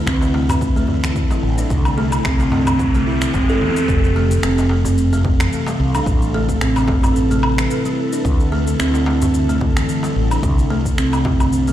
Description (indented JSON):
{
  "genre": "organic downtempo",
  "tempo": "110 BPM",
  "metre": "4/4",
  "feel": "swing 55% on 16ths",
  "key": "A minor",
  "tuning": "A4 = 442 Hz",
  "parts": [
    { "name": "ethereal airy pad", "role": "sustained chords", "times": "0.0-11.7 s", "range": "C3 to F5", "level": "-24 LUFS", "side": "equal", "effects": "ensemble chorus, built-in reverb, sidechain pumping" },
    { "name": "riser", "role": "sound effects", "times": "1.1-3.9 s", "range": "none", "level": "-28 LUFS", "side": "equal", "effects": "none" },
    { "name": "buzzing kalimba", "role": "arpeggios", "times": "0.1-11.7 s", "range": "E3 to A4", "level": "-20 LUFS", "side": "right 1 dB", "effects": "digital delay" },
    { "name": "mellow fretless electric bass", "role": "bass", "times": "0.1-11.7 s", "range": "F1 to E2", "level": "-19 LUFS", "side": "equal", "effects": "none" },
    { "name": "electronic finger snaps, shaker and woodblock", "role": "drums", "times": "0.1-11.7 s", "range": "none", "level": "-26 LUFS", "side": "equal", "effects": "overdrive, small room ambience" },
    { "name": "electronic kick drum", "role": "drums", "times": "0.1-11.4 s", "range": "none", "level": "-20 LUFS", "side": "equal", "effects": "overdrive, small room ambience" },
    { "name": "darbuka", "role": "percussion", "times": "0.2-11.5 s", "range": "none", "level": "-26 LUFS", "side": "left 1 dB", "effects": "none" }
  ],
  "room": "moderate lush hall reverb, RT60 1.9 s",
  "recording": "played on a big sound system in a bare room, large studio reverb",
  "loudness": "-15 LUFS",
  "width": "side -12 dB against mid",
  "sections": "0.0-3.9 A section; 3.9-11.7 B section",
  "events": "riser 1.1-3.9",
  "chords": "0.0 Asus2; 1.7 Cadd9; 3.9 F; 6.1 Amadd9; 10.4 Cadd9",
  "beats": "0.07 0.61 1.16 | 1.71 2.25 2.80 3.34 | 3.89 4.43 4.98 5.52 | 6.07 6.62 7.16 7.71 | 8.25 8.80 9.34 9.89 | 10.43 10.98 11.52"
}